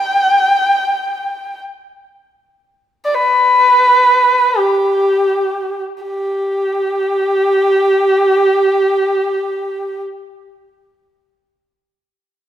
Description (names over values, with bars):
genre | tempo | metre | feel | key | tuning
chinese traditional | free time | none | none | G gong mode | A4 = 440 Hz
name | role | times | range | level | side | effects
dark erhu | melody | 0.0-10.0 s | G4 to G5 | -12 LUFS | equal | none
room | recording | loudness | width
moderate scoring stage reverb, RT60 1.9 s | minimal, uncompressed stereo recording | -12 LUFS | side -11 dB against mid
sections
0.0-6.0 A section; 6.0-10.0 B section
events
slowing down 0.0-6.0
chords
none